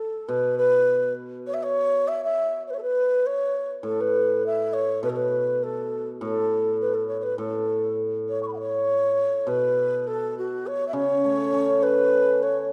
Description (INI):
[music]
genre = chinese traditional, Chinese chamber ensemble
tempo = 102 BPM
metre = 2/4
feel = rubato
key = A gong mode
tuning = A4 = 441 Hz
[part]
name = breathy mellow xiao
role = melody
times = 0.0-12.7 s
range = F#4 to C#6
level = -25 LUFS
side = equal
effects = none
[part]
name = hammered dulcimer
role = accompaniment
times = 0.3-12.7 s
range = A2 to C#4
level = -30 LUFS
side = equal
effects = none
[sound]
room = moderate scoring stage reverb, RT60 1.8 s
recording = dark, warm production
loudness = -24 LUFS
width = mono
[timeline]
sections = 0.0-8.6 A section; 8.6-12.7 B section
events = none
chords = none